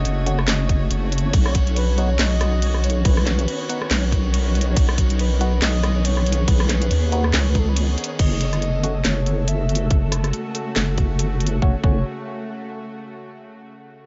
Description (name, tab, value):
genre	deep dubstep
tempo	140 BPM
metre	4/4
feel	swing 57% on 16ths, half-time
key	F# dorian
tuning	A4 = 440 Hz
part	breathy flute-like synth lead	melody	0.0-12.0 s	A4 to E5	-33 LUFS	equal	chorus, dub echo
part	bowed-like drone	sustained chords	0.0-11.8 s	C#3 to G#4	-34 LUFS	equal	built-in reverb
part	deep soft wobble bass	bass	0.0-12.0 s	F#1 to D#2	-22 LUFS	equal	chorus
part	flickering grainy texture	texture	0.0-11.6 s	A3 to C#5	-35 LUFS	equal	built-in reverb
part	garage drum kit	drums	0.1-11.6 s	crash cymbal, handclaps, hi-hat, rim click, snare drum	-28 LUFS	equal	none
part	percussive organ stab	stabs	0.3-9.0, 11.6-12.0 s	A3 to F#4	-36 LUFS	equal	chorus, phaser, dub echo
part	electronic kick drum	drums	0.7-11.9 s	none	-21 LUFS	equal	none
room	digital ambience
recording	nothing above 7.7 kHz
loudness	-20 LUFS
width	mono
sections	0.0-8.2 A section; 8.2-11.6 B section; 11.6-13.3 C section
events	drop 0.0-8.2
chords	0.0 F#m; 1.3 B; 8.2 F#m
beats	0.05 0.48 0.91 | 1.34 1.76 2.19 2.62 | 3.05 3.48 3.91 4.34 | 4.76 5.19 5.62 6.05 | 6.48 6.91 7.34 7.76 | 8.19 8.62 9.05 9.48 | 9.91 10.34 10.77 11.19 | 11.62